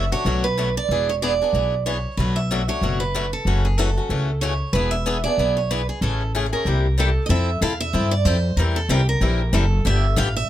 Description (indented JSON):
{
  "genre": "acoustic string swing (jazz manouche)",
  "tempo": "188 BPM",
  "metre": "4/4",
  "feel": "swing 58% on 8ths",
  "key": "F major from 7.3 s",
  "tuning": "A4 = 440 Hz",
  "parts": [
    { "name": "picked steel-string acoustic guitar", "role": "melody", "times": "0.0-10.5 s", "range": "G4 to F5", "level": "-24 LUFS", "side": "right 5 dB", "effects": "none" },
    { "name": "picked swing-style acoustic guitar", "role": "accompaniment", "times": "0.0-10.3 s", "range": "B2 to Bb4", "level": "-25 LUFS", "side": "left 5 dB", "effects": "none" },
    { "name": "upright bass", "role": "bass", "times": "0.0-10.5 s", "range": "E1 to G2", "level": "-21 LUFS", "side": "equal", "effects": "none" }
  ],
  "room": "little or no reverb",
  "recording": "none",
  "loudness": "-18 LUFS",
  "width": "side -12 dB against mid",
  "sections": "0.0-7.3 A section; 7.3-10.5 B section",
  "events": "none",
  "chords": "0.0 Bm7/F#; 0.9 E7; 2.2 Bm7; 3.5 F#m7; 4.7 E7; 6.0 Amaj7; 6.7 C7; 7.3 Fmaj7; 8.6 C7; 9.9 G7"
}